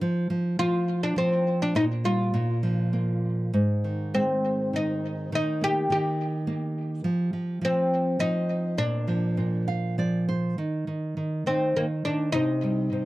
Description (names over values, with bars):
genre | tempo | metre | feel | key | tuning
children's music, lullaby | 102 BPM | 3/4 | rubato | Eb major | A4 = 440 Hz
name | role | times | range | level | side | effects
nylon-string guitar | accompaniment | 0.0-13.1 s | Ab2 to F5 | -26 LUFS | right 1 dB | none
oud | melody | 0.6-13.1 s | Bb3 to G4 | -26 LUFS | left 1 dB | tape echo
room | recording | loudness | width
moderate booth ambience, RT60 0.2 s | dry, close 1970s-style studio recording | -24 LUFS | side -17 dB against mid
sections
0.0-10.6 A section; 10.6-13.1 B section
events
nylon-string guitar fill 9.4-10.6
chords
0.0 N.C.; 1.8 Eb/Bb (rootless); 2.3 Bb5; 3.5 Ab; 5.3 Eb; 7.1 N.C.; 8.8 Bb; 10.6 N.C.; 12.3 Cm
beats
| 0.01 0.59 1.17 | 1.75 2.34 2.93 | 3.54 4.14 4.74 | 5.33 5.91 6.48 | 7.05 7.63 8.20 | 8.79 9.38 9.98 | 10.58 11.17 11.76 | 12.35 12.92